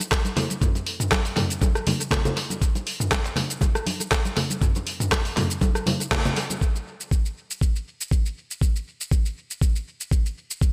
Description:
house; 120 BPM; 4/4; swing 54% on 16ths
deep house drum kit; drums; 0.0-10.7 s; handclaps, hi-hat, rim click, shaker, toms; -29 LUFS; equal; overdrive, tape echo
congas; percussion; 0.0-6.6 s; -30 LUFS; equal; tape echo
electronic kick drum; drums; 0.1-10.7 s; -24 LUFS; equal
light reverb, digital ambience; echo-heavy mix; -25 LUFS; mono
0.0-6.6 A section; 6.6-10.7 B section
band accent 6.1

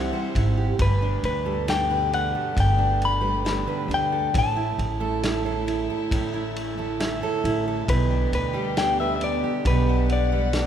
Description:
acoustic folk-pop ballad; 68 BPM; 4/4; straight; G major; A4 = 440 Hz
direct-recorded clean electric guitar; melody; 0.0-10.7 s; B4 to B5; -25 LUFS; left 4 dB; harmonic tremolo
fingerpicked steel-string acoustic guitar; accompaniment; 0.0-10.7 s; G2 to C5; -28 LUFS; right 5 dB
dark chamber string section; sustained chords; 0.0-10.7 s; B2 to F#5; -34 LUFS; left 1 dB
upright bass; bass; 0.0-10.7 s; G1 to D2; -26 LUFS; equal
loose indie drum kit; drums; 0.4-10.7 s; kick drum, ride cymbal, snare drum; -31 LUFS; equal
light reverb; minimal, uncompressed stereo recording; -21 LUFS; side -9 dB against mid
0.0-10.7 A section
0.0 C; 0.8 Gadd9; 4.3 Dsus2/A; 7.9 G/B

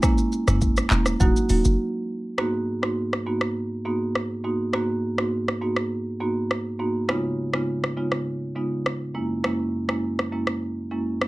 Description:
afrobeats; 102 BPM; 4/4; straight; G# minor; A4 = 439 Hz
marimba with medium mallets; accompaniment; 0.0-11.1 s; F#2 to F#4; -24 LUFS; right 1 dB
afro-pop drum kit; drums; 0.0-11.3 s; handclaps, hi-hat, kick drum, rim click, shaker, toms; -23 LUFS; equal
short 808-style bass; bass; 0.5-1.8 s; D#1 to F#1; -22 LUFS; equal
light reverb; -22 LUFS; side -19 dB against mid
0.0-2.4 A section; 2.4-11.3 B section
break 1.8-2.4
0.0 F#7; 1.2 D#m; 2.4 G#m7; 7.1 C#7; 9.1 F#7

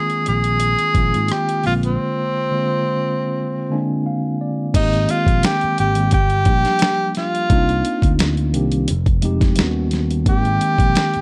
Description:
R&B, neo-soul; 87 BPM; 4/4; swing 53% on 16ths; A4 = 441 Hz
breathy tenor saxophone; melody; 0.0-11.2 s; C4 to Ab4; -22 LUFS; equal; slapback echo
mellow tine electric piano; accompaniment; 0.0-11.2 s; D3 to Ab5; -24 LUFS; equal
dusty soul sampler-style drum kit; drums; 0.1-11.2 s; crash cymbal, hi-hat, kick drum, rim click, snare drum; -21 LUFS; equal
fingered electric bass; bass; 0.3-11.2 s; F1 to Ab2; -23 LUFS; equal
little or no reverb; dark, warm production; -18 LUFS; mono
0.0-4.7 A section; 4.7-11.2 B section
break 2.0-4.7; tine electric piano fill 3.4-4.7
0.0 Ab69; 1.6 Bb9; 4.7 Abmaj9; 6.1 Gm7; 7.5 Cm11; 8.9 Fm9; 9.6 Eb7alt; 10.3 Abmaj9

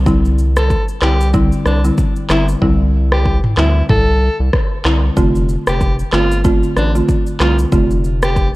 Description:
afrobeats; 94 BPM; 4/4; swing 58% on 16ths; C major; A4 = 440 Hz
round analog bass; bass; 0.0-8.5 s; F1 to D2; -15 LUFS; equal
buzzing marimba with medium mallets; accompaniment; 0.1-8.3 s; D3 to F4; -18 LUFS; equal
afro-pop drum kit; drums; 0.1-8.5 s; handclaps, kick drum, rim click, shaker, toms; -17 LUFS; equal
breathy alto saxophone; melody; 0.6-8.5 s; D4 to A4; -22 LUFS; equal; ping-pong delay
digital ambience; worn, warbling old tape, cassette tape, warbly pitch drift; -12 LUFS; side -19 dB against mid
0.0-8.6 A section
hi-hats muted 2.6-5.2
0.0 Cadd9; 5.2 F6

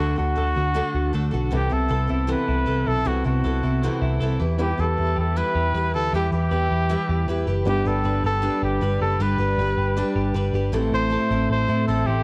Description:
indie pop; 156 BPM; 4/4; straight; A dorian; A4 = 440 Hz
clear trumpet; melody; 0.0-12.2 s; F#4 to C5; -28 LUFS; equal
picked steel-string acoustic guitar; accompaniment; 0.0-12.2 s; A2 to B4; -31 LUFS; equal
twelve-string electric guitar; arpeggios; 0.0-12.2 s; A2 to B4; -30 LUFS; equal
vintage muted picked electric bass; bass; 0.0-12.2 s; F#1 to A2; -26 LUFS; equal
dark upright piano; accompaniment; 4.6-10.8 s; B3 to G4; -35 LUFS; equal
warm analog pad; sustained chords; 4.6-12.2 s; G4 to C6; -37 LUFS; equal; chorus
light reverb, small room ambience; worn, warbling old tape, cassette tape, warbly pitch drift; -22 LUFS; mono
0.0-10.7 A section; 10.7-12.2 B section
0.0 D; 1.5 Amadd9; 4.4 Em; 7.7 G; 10.7 Am

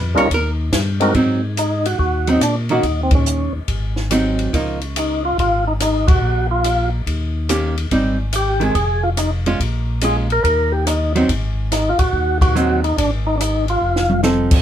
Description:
soul jazz organ trio; 142 BPM; 4/4; swing 66% on 8ths; Ab mixolydian; A4 = 440 Hz
archtop guitar, miked and amplified; accompaniment; 0.0-4.8, 7.5-14.6 s; Eb3 to Db5; -18 LUFS; right 2 dB
tonewheel organ; bass; 0.0-14.6 s; F1 to Bb2; -21 LUFS; left 1 dB; overdrive
percussive tonewheel organ; melody; 0.1-14.2 s; G3 to Bb4; -18 LUFS; equal; slow rotary speaker, overdrive
compact cocktail drum kit; drums; 0.2-14.6 s; crash cymbal, hi-hat, kick drum, ride cymbal, rim click, snare drum, toms; -21 LUFS; equal
light reverb; band playing live in one room; -15 LUFS; side -10 dB against mid
0.0-1.1 A section; 1.1-14.6 B section
hollow-body jazz guitar solo 0.0-1.1; band accent 3.0, 6.0, 12.3; drum fill 13.8-14.2
0.3 Eb; 1.1 Ab7; 2.8 Dbsus2/Eb; 3.7 Ab7; 4.5 Db69; 6.2 Bb5; 7.1 Eb7; 7.9 Abmaj7; 8.7 Fm; 9.6 Bbm7; 10.4 Eb5; 11.3 Ab7(no3); 13.8 F7

